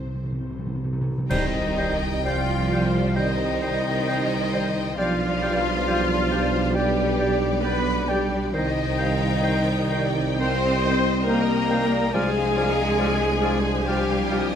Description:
classical, slow romantic movement for symphony orchestra; 66 BPM; 4/4; uneven beats, rubato; C minor; A4 = 440 Hz
rich studio violin section; melody; 0.0-14.6 s; C5 to Ab5; -34 LUFS; left 7 dB
dark studio violin section; second line; 0.0-14.6 s; Bb4 to Ab5; -32 LUFS; left 2 dB
warm studio viola section; accompaniment; 0.0-14.6 s; Eb4 to C5; -28 LUFS; right 1 dB
warm studio cello section; bass; 0.0-14.6 s; C3 to C4; -30 LUFS; equal
warm studio double bass section; bass; 0.0-14.6 s; B1 to C2; -30 LUFS; right 2 dB
timpani; percussion; 0.0-2.7, 12.1-13.4 s; C3; -30 LUFS; equal
clear clarinet; second line; 1.3-14.5 s; C5 to D5; -37 LUFS; left 2 dB
clear oboe; second line; 1.3-14.5 s; F5 to G5; -35 LUFS; right 1 dB
silver concert flute; second line; 1.3-14.6 s; Eb5 to C6; -31 LUFS; left 2 dB
mellow bassoon; accompaniment; 1.3-14.5 s; Eb3 to G3; -35 LUFS; right 2 dB
clear trombone section; sustained chords; 1.3-14.6 s; F3 to D4; -31 LUFS; right 3 dB
mellow French horn section; sustained chords; 1.3-14.6 s; Eb3 to C4; -31 LUFS; left 5 dB
dark tuba; bass; 1.3-14.6 s; B1 to C2; -29 LUFS; right 3 dB
clash cymbals and concert bass drum; percussion; 1.3-3.1 s; -33 LUFS; equal
moderate concert hall reverb, RT60 2.3 s; close, detailed microphones; -20 LUFS; side -8 dB against mid
0.0-1.3 A section; 1.3-14.6 B section
timpani fill 0.0-1.3; band accent 1.3-2.2
0.0 N.C.; 1.3 Cm; 5.0 G7/B; 8.5 Cm; 12.2 Dm7b5/C
0.26 | 1.30 2.25 3.16 4.07 | 4.98 5.87 6.75 7.63 | 8.54 9.43 10.41 11.28 | 12.15 13.01 13.88

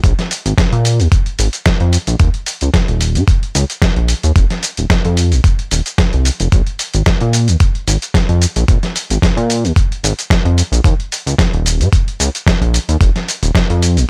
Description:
nu-disco, nu disco; 111 BPM; 4/4; swing 54% on 16ths; Bb minor; A4 = 440 Hz
chorused synth bass; bass; 0.0-14.0 s; Eb1 to Bb2; -15 LUFS; equal
dusty soul sampler-style drum kit; drums; 0.0-14.1 s; hi-hat, shaker, snare drum; -21 LUFS; equal; overdrive
electronic kick drum; drums; 0.0-13.7 s; -15 LUFS; equal; overdrive
little or no reverb; -14 LUFS; mono
0.0-14.1 A section
| 0.04 0.58 1.12 1.66 | 2.20 2.74 3.28 3.82 | 4.36 4.90 5.44 5.98 | 6.52 7.06 7.60 8.14 | 8.68 9.22 9.77 10.31 | 10.85 11.39 11.93 12.47 | 13.01 13.55

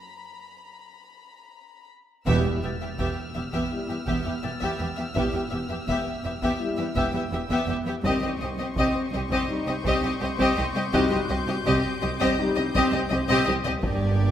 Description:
cinematic, suspense film score; 83 BPM; 4/4; straight; E harmonic minor; A4 = 440 Hz
warm chamber violin section; texture; 0.0-14.3 s; A#5 to G#6; -38 LUFS; left 5 dB
worn celesta; texture; 0.0-13.9 s; F#4 to A6; -39 LUFS; left 5 dB
warm symphonic violin section; melody; 2.3-14.3 s; D5 to E5; -30 LUFS; left 3 dB
warm symphonic violin section; second line; 2.3-14.3 s; G4; -31 LUFS; equal
dark symphonic viola section; accompaniment; 2.3-14.3 s; Bb3 to C4; -29 LUFS; equal
dark French horn section; sustained chords; 2.3-14.3 s; Eb3 to E4; -32 LUFS; left 3 dB
dark studio cello section; bass; 2.3-14.3 s; C2 to G2; -31 LUFS; right 2 dB
rich symphonic double bass section; bass; 2.3-14.3 s; E1 to C2; -32 LUFS; right 3 dB
taiko ensemble; drums; 2.3-14.3 s; -34 LUFS; equal
timpani; percussion; 2.3-3.3 s; E2; -35 LUFS; equal
wet concert hall reverb, RT60 1.9 s; -23 LUFS; side -10 dB against mid
0.0-2.3 A section; 2.3-14.3 A section
break 0.0-2.3; band accent 2.3-3.0; drum fill 13.1-13.8
0.0 N.C.; 2.3 Em; 8.1 Cm
0.10 0.83 1.55 | 2.27 3.00 3.72 4.44 | 5.16 5.89 6.61 7.33 | 8.06 8.78 9.50 10.22 | 10.95 11.67 12.39 13.12 | 13.84

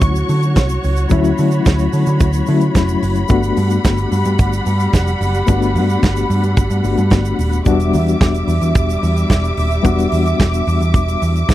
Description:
disco; 110 BPM; 4/4; straight; A4 = 440 Hz
bright reed electric piano; accompaniment; 0.0-11.5 s; F#3 to F#4; -20 LUFS; left 5 dB; overdrive, fast tremolo
dark studio string section; sustained chords; 0.0-11.5 s; G3 to D6; -21 LUFS; right 1 dB
hollow-body short-scale picked electric bass; bass; 0.0-11.5 s; Eb1 to D3; -16 LUFS; right 1 dB
modern studio drum kit; drums; 0.0-11.5 s; hi-hat, kick drum, snare drum; -14 LUFS; right 1 dB
tube shaker; percussion; 0.0-11.5 s; -37 LUFS; right 15 dB
little or no reverb; dry, close 1970s-style studio recording; -13 LUFS; side -14 dB against mid
0.0-11.5 A section
0.0 Dmaj7; 3.3 Gmaj7; 7.7 Em7
0.02 0.56 | 1.11 1.66 2.20 2.75 | 3.29 3.84 4.39 4.93 | 5.48 6.03 6.57 7.12 | 7.67 8.21 8.76 9.30 | 9.85 10.40 10.94 11.49

